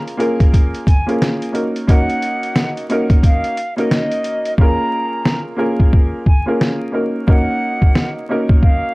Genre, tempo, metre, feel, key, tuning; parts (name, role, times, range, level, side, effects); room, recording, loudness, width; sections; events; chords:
hip hop, boom-bap hip-hop; 89 BPM; 4/4; swing 60% on 16ths; Bb minor; A4 = 440 Hz
silver concert flute; melody; 0.0-8.9 s; Eb5 to Bb5; -23 LUFS; equal; high-pass filter, low-pass filter, tape echo
warm upright piano; accompaniment; 0.0-8.9 s; Bb3 to Bb4; -19 LUFS; equal; high-pass filter, low-pass filter
trip hop sampler-style drum kit; drums; 0.1-8.8 s; hi-hat, kick drum, snare drum; -13 LUFS; equal
studio ambience; dry, gritty hardware recording, vinyl crackle; -14 LUFS; side -23 dB against mid
0.0-4.6 A section; 4.6-8.9 B section
hi-hats muted 4.6-8.9
0.0 Bbm7; 1.5 Ebm7; 4.6 Bbm7; 6.9 Ebm7